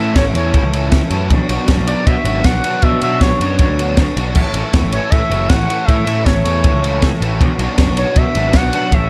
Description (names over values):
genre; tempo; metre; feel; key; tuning
indie rock; 158 BPM; 4/4; straight; unclear; A4 = 440 Hz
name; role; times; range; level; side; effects
expressive synth lead; melody; 0.0-9.1 s; C#5 to F#5; -23 LUFS; equal; chorus, phaser
tonewheel organ; sustained chords; 0.0-9.1 s; D4 to C#6; -35 LUFS; equal; none
electric guitar through a small old amp; riff; 0.0-9.1 s; A3 to C#5; -26 LUFS; equal; lush chorus
fuzz guitar; riff; 0.0-8.9 s; E3 to F#4; -25 LUFS; equal; distortion, ensemble chorus, tape echo
fuzz picked electric bass; bass; 0.0-9.1 s; F#1 to B2; -20 LUFS; equal; overdrive
compact cocktail drum kit; drums; 0.2-9.0 s; crash cymbal, kick drum, ride cymbal, snare drum; -18 LUFS; equal; none
room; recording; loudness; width
little or no reverb; dark, warm production; -15 LUFS; mono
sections
0.0-9.1 A section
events
none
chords
0.0 A; 1.3 Bmadd9; 4.4 A; 7.4 Bmadd9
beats
0.16 0.54 0.93 | 1.31 1.69 2.07 2.46 | 2.84 3.22 3.60 3.98 | 4.36 4.75 5.13 5.51 | 5.89 6.27 6.65 7.03 | 7.41 7.79 8.17 8.55 | 8.93